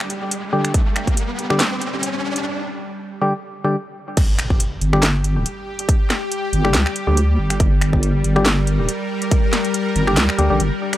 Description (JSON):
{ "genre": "deep dubstep", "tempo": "140 BPM", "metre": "4/4", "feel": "swing 55% on 16ths, half-time", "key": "G minor", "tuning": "A4 = 440 Hz", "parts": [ { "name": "bowed-like drone", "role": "sustained chords", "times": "0.0-11.0 s", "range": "G3 to Bb4", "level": "-26 LUFS", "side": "left 1 dB", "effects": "built-in reverb" }, { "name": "garage drum kit", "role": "drums", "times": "0.0-11.0 s", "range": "crash cymbal, finger snaps, handclaps, hi-hat, snare drum", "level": "-21 LUFS", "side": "equal", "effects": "none" }, { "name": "riser and impact", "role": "sound effects", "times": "0.0-5.9 s", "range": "none", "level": "-27 LUFS", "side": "equal", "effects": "none" }, { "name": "percussive organ stab", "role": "stabs", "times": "0.5-10.6 s", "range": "D3 to G4", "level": "-23 LUFS", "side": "left 1 dB", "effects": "chorus, dub echo" }, { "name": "electronic kick drum", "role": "drums", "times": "0.7-1.2, 4.2-9.4 s", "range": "none", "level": "-17 LUFS", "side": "equal", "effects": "overdrive" }, { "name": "deep soft wobble bass", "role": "bass", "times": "4.8-10.7 s", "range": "D1 to D2", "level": "-17 LUFS", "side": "equal", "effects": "chorus" } ], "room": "little or no reverb", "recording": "dry, gritty hardware recording", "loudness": "-16 LUFS", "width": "side -14 dB against mid", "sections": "0.0-4.2 A section; 4.2-11.0 B section", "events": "build-up 0.0-4.2; riser 0.0-2.5; filter sweep on synth stab 0.0-4.2; break 2.5-4.2; drop 4.2-11.0; impact 4.2-5.9", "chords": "0.0 G5", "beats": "0.31 | 0.74 1.17 1.60 2.03 | 2.46 2.89 3.31 3.74 | 4.17 4.60 5.03 5.46 | 5.89 6.31 6.74 7.17 | 7.60 8.03 8.46 8.89 | 9.31 9.74 10.17 10.60" }